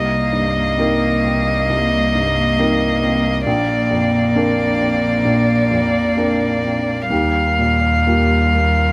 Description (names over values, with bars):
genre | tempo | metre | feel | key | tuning
neoclassical piano and strings | 62-68 BPM | 4/4 | rubato | C minor | A4 = 441 Hz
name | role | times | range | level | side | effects
warm violin | melody | 0.0-8.9 s | D5 to F5 | -21 LUFS | equal | none
rich cello | second line | 0.0-8.9 s | G3 to Bb3 | -24 LUFS | equal | none
felt-muted upright piano | accompaniment | 0.0-8.9 s | Bb1 to Bb4 | -23 LUFS | equal | none
warm chamber string section | sustained chords | 0.0-8.9 s | G3 to C5 | -31 LUFS | equal | none
rich double bass | bass | 0.0-8.9 s | Bb1 to Eb2 | -24 LUFS | equal | none
room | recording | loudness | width
wet studio reverb, RT60 0.5 s | band playing live in one room | -17 LUFS | mono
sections
0.0-8.9 A section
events
none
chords
0.0 Cm7; 3.5 Bbadd9; 7.1 Ebadd9